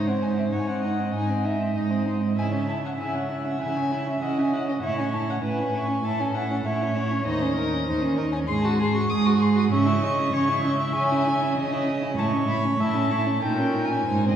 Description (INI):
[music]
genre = quick classical-period movement for string quartet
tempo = 98 BPM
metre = 4/4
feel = rubato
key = C# minor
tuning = A4 = 440 Hz
[part]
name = dark violin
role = melody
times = 0.0-14.4 s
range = B#4 to D#6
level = -28 LUFS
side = left 2 dB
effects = none
[part]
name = rich violin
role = second line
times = 0.0-14.4 s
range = B#3 to G#4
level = -28 LUFS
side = equal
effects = none
[part]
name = warm viola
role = accompaniment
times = 0.0-14.4 s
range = G#4 to E5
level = -32 LUFS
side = right 1 dB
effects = none
[part]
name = rich cello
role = bass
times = 0.0-14.4 s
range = D#2 to C#3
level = -25 LUFS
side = right 2 dB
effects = none
[sound]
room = wet church reverb, RT60 2.9 s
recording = heard from further back in the room, small room ambience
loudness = -22 LUFS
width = side -9 dB against mid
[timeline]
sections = 0.0-14.4 A section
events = none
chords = 0.0 G#; 2.4 C#m; 4.8 A; 7.3 A#madd9/D#; 8.5 G#7; 9.7 C#m; 12.2 A; 13.4 D#7/A#